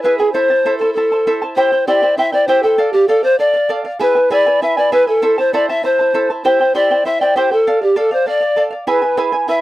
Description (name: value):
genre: andean folk, Andean ensemble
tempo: 98 BPM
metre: 2/4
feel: straight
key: A minor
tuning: A4 = 441 Hz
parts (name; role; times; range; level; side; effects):
- polished pan flute; melody; 0.0-9.6 s; G4 to E5; -13 LUFS; left 1 dB; none
- charango; accompaniment; 0.0-9.6 s; E4 to A5; -18 LUFS; right 2 dB; none
room: light reverb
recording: dry, close 1970s-style studio recording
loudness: -12 LUFS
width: side -16 dB against mid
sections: 0.0-1.6 A section; 1.6-9.6 A section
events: none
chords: 0.4 Am; 1.6 C; 2.8 Dm; 4.0 E; 5.2 Am; 6.4 C; 7.7 Dm; 8.9 E